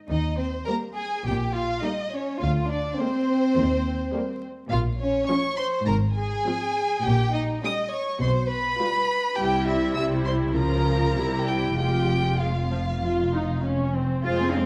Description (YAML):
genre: quick classical-period movement for string orchestra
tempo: 103 BPM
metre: 4/4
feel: rubato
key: F minor from 4.7 s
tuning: A4 = 439 Hz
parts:
  - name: rich chamber violin section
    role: melody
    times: 0.1-14.7 s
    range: C5 to E6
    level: -32 LUFS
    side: equal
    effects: none
  - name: rich chamber violin section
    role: second line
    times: 0.1-14.7 s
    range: C4 to E5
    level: -31 LUFS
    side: equal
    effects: none
  - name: rich studio cello section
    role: bass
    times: 0.1-14.7 s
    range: D2 to F4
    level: -31 LUFS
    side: equal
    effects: none
  - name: warm chamber double bass section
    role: bass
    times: 0.1-14.7 s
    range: F1 to F2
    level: -30 LUFS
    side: equal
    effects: none
  - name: warm studio viola section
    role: accompaniment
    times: 0.7-14.7 s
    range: F3 to F4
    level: -30 LUFS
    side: equal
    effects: none
room: moderate recital hall reverb, RT60 1.4 s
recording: vinyl crackle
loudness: -25 LUFS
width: mono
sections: 0.0-14.3 A section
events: none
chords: 0.1 Eb; 2.4 Bb7/D; 3.6 Eb; 4.7 Bbm; 5.9 Fm/Ab; 7.0 Gdim/Bb; 8.2 G7/B; 9.4 C; 10.6 Bbm/Db; 11.2 C7; 11.8 Fm